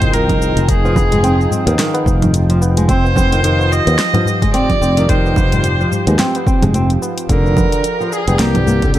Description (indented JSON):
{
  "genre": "organic downtempo",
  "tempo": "109 BPM",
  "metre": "4/4",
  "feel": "swing 57% on 16ths",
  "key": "F dorian",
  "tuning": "A4 = 441 Hz",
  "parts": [
    { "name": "clear kamancheh", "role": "melody", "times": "0.0-9.0 s", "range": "G4 to Eb5", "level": "-19 LUFS", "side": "right 1 dB", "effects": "digital delay" },
    { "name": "warm analog pad", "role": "sustained chords", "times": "0.0-9.0 s", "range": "F3 to G5", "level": "-23 LUFS", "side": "right 1 dB", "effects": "chorus, sidechain pumping" },
    { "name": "flamenco guitar", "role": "arpeggios", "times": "0.0-9.0 s", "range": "D3 to C4", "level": "-19 LUFS", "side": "equal", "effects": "tape echo" },
    { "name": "sustaining fretless electric bass", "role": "bass", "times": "0.0-9.0 s", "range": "F1 to Eb2", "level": "-16 LUFS", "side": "equal", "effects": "sidechain pumping" },
    { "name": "deep house drum kit", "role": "drums", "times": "0.0-9.0 s", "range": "congas, hi-hat, shaker, snare drum", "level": "-21 LUFS", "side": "right 2 dB", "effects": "none" },
    { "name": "electronic kick drum", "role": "drums", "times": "0.0-8.9 s", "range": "none", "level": "-17 LUFS", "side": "equal", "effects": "none" },
    { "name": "tabla", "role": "percussion", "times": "0.0-8.9 s", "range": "none", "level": "-23 LUFS", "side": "left 3 dB", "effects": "none" }
  ],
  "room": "light reverb, digital ambience",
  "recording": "dark, warm production",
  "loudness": "-12 LUFS",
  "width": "side -13 dB against mid",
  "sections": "0.0-9.0 A section",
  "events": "none",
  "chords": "0.0 Fm7; 7.3 Gm7/F"
}